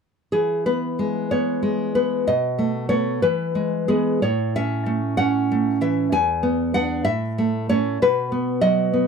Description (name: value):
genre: romantic piece for solo classical guitar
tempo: 63 BPM (dotted quarters)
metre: 6/8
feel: uneven beats, rubato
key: E major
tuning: A4 = 445 Hz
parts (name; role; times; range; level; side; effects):
- nylon-string guitar; solo; 0.3-9.1 s; E2 to G#5; -19 LUFS; equal; none
room: moderate booth ambience, RT60 0.2 s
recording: dry, close 1970s-style studio recording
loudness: -19 LUFS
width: side -5 dB against mid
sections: 0.3-9.1 A section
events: none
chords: 0.3 E; 2.3 B7; 3.2 E; 4.2 A; 6.1 E7; 7.0 A; 8.0 B